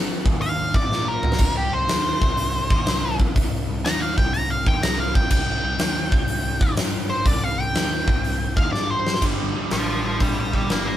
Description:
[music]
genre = blues rock power trio and southern rock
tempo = 123 BPM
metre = 4/4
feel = swing 67% on 8ths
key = unclear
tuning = A4 = 440 Hz
[part]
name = fuzz picked electric bass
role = bass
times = 0.0-11.0 s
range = G1 to Bb2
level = -28 LUFS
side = equal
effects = overdrive
[part]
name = huge arena drum kit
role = drums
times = 0.3-10.9 s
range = crash cymbal, hi-hat, kick drum, snare drum, toms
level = -21 LUFS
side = equal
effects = none
[part]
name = octave-fuzz lead guitar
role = melody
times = 0.4-11.0 s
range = G4 to Bb5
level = -25 LUFS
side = equal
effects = distortion
[part]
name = overdriven electric guitar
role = riff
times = 9.2-11.0 s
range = G2 to G3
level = -26 LUFS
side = right 2 dB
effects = none
[sound]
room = light reverb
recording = band playing live in one room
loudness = -19 LUFS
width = side -12 dB against mid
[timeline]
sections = 0.0-9.2 A section; 9.2-11.0 B section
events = lead electric guitar solo 0.0-9.2; drum fill 0.9-1.4, 8.7-9.2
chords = 0.0 Eb5; 1.4 C5; 9.2 Gm

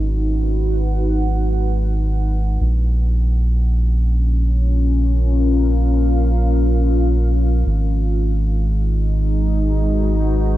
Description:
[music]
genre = ambient dub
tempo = free time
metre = none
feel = none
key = G# dorian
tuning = A4 = 440 Hz
[part]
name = deep dark ambient pad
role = sustained chords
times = 0.0-10.6 s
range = G#3 to F#5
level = -23 LUFS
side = left 2 dB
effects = chorus, built-in reverb, cassette tape
[part]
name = soft dub sub bass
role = bass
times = 0.0-10.6 s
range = G#1 to A#1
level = -16 LUFS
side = equal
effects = none
[sound]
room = little or no reverb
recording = home recording on cassette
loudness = -16 LUFS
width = side -15 dB against mid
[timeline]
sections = 0.0-10.6 A section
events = none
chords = 0.0 G#m7; 2.6 A#m7; 7.7 G#m7

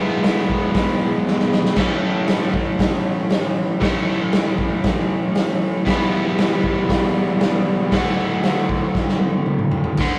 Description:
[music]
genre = garage rock duo or trio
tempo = 117 BPM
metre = 4/4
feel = straight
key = D major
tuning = A4 = 440 Hz
[part]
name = overdriven electric guitar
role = riff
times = 0.0-10.2 s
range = D2 to A4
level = -23 LUFS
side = equal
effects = none
[part]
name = raw garage drum kit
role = drums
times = 0.2-10.1 s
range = crash cymbal, hi-hat, kick drum, snare drum, toms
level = -22 LUFS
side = equal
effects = none
[sound]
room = moderate stone room reverb, RT60 1.2 s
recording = rough rehearsal-room recording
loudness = -19 LUFS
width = mono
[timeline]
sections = 0.0-10.0 A section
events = drum fill 1.3-1.8, 9.0-10.0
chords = 0.0 E; 1.8 A; 5.9 Em; 7.9 D

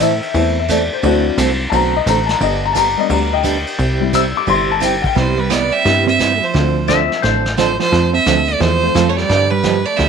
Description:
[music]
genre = country, western swing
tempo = 174 BPM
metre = 4/4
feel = swing 64% on 8ths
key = C major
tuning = A4 = 438 Hz
[part]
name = picked steel-string acoustic guitar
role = accompaniment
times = 0.0-10.1 s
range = C3 to A4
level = -20 LUFS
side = right 11 dB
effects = none
[part]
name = warm upright piano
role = accompaniment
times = 0.0-9.3 s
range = F#3 to E6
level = -18 LUFS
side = left 11 dB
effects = none
[part]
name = plucky analog bass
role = bass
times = 0.0-10.1 s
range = G1 to A2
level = -18 LUFS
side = equal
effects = none
[part]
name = vintage brush drum kit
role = drums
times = 0.0-10.1 s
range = brushed snare drum, hi-hat, kick drum, ride cymbal, snare drum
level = -22 LUFS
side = equal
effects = none
[part]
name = clear fiddle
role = melody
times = 5.2-10.1 s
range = B4 to E5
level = -17 LUFS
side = right 3 dB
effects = none
[part]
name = hollow-body jazz guitar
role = second line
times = 5.2-10.1 s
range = F3 to C4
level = -21 LUFS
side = right 13 dB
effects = tape echo
[part]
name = clean lap steel guitar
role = second line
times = 6.9-7.5 s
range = C5 to E5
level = -18 LUFS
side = left 10 dB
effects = none
[sound]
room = light reverb, studio ambience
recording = 1960s-style stereo with parts hard left and right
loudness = -13 LUFS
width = side -6 dB against mid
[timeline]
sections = 0.0-5.2 A section; 5.2-10.1 B section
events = upright piano solo 0.0-5.2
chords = 0.0 Am; 1.0 D7; 2.4 G; 3.8 C; 5.2 Cmaj7; 6.5 Dm7; 7.9 F; 9.3 G7

